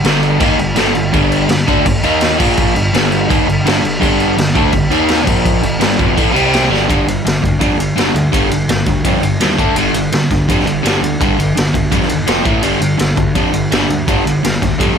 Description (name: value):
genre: garage rock duo or trio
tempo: 167 BPM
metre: 4/4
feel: straight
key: G minor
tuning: A4 = 441 Hz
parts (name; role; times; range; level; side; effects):
- crunchy overdriven guitar; riff; 0.0-15.0 s; F2 to F4; -14 LUFS; equal; none
- fuzz picked electric bass; bass; 0.0-14.9 s; F1 to F2; -21 LUFS; equal; overdrive
- raw garage drum kit; drums; 0.0-14.9 s; crash cymbal, kick drum, ride cymbal, snare drum; -16 LUFS; equal; none
room: little or no reverb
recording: none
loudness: -11 LUFS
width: side -7 dB against mid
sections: 0.0-6.9 A section; 6.9-15.0 B section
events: drum fill 6.7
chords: 0.0 G5; 2.0 Eb5; 2.4 Bb5; 2.7 G5; 4.9 Eb5; 5.3 Bb5; 5.6 G5; 6.3 C5; 6.7 G5; 9.6 D5; 9.8 G5; 12.3 F5; 12.5 A5; 12.6 G5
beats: 0.04 0.40 0.77 | 1.12 1.49 1.85 2.21 | 2.57 2.93 3.29 3.65 | 4.01 4.37 4.73 5.09 | 5.45 5.80 6.16 6.52 | 6.88 7.24 7.60 7.96 | 8.32 8.68 9.04 9.40 | 9.76 10.12 10.48 10.84 | 11.20 11.56 11.92 12.28 | 12.63 12.99 13.35 13.71 | 14.07 14.43 14.79